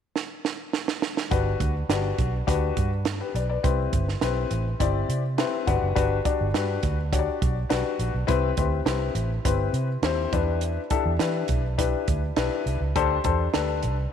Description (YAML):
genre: uptempo 1960s-style soul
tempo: 103 BPM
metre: 4/4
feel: straight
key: G major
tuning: A4 = 442 Hz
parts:
  - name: compact cocktail drum kit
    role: drums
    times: 0.2-14.0 s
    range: hi-hat, kick drum, snare drum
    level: -28 LUFS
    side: right 4 dB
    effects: none
  - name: warm upright piano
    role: accompaniment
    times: 1.3-14.0 s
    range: C4 to F#5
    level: -26 LUFS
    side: left 9 dB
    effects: none
  - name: vintage muted fingered electric bass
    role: bass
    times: 1.3-14.1 s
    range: F#1 to E3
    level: -26 LUFS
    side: right 1 dB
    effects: none
room: moderate echo chamber reverb, RT60 2.4 s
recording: 1960s-style stereo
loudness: -23 LUFS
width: side -8 dB against mid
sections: 0.0-1.3 A section; 1.3-6.0 B section; 6.0-14.1 C section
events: drum fill 0.2-1.3; upright piano fill 5.1-6.0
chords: 0.0 N.C.; 1.3 Gmaj7; 3.6 Cmaj7; 5.7 Gmaj7; 8.3 Cmaj7; 10.3 Em7; 13.0 D7sus4